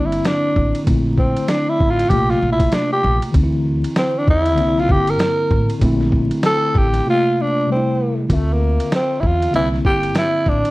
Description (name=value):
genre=hip hop, jazz-hop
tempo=97 BPM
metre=4/4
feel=swing 61% on 16ths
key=D minor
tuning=A4 = 440 Hz
part: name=growling tenor saxophone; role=melody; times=0.0-10.7 s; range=A3 to Bb4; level=-18 LUFS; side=equal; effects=slapback echo
part: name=mellow tine electric piano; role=accompaniment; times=0.0-10.7 s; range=C3 to E5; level=-21 LUFS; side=left 1 dB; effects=medium stereo tremolo
part: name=upright bass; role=bass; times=0.0-10.6 s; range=G1 to E2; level=-20 LUFS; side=equal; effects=none
part: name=boom bap sampler-style drum kit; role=drums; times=0.1-10.7 s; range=hi-hat, kick drum, ride cymbal, snare drum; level=-20 LUFS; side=equal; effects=none
room=light reverb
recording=dry, close 1970s-style studio recording, vinyl crackle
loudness=-15 LUFS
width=side -20 dB against mid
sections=0.0-8.3 A section; 8.3-10.7 B section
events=tenor saxophone solo 0.0-8.3; silent gap 7.1-8.3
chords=0.0 C9; 0.9 Bbmaj9#11; 2.1 Bbmaj7sus2; 3.3 Dsus2; 4.6 C9; 5.8 Bbmaj9#11; 7.1 C13sus4; 7.7 Am7; 8.3 Dm9; 9.5 C9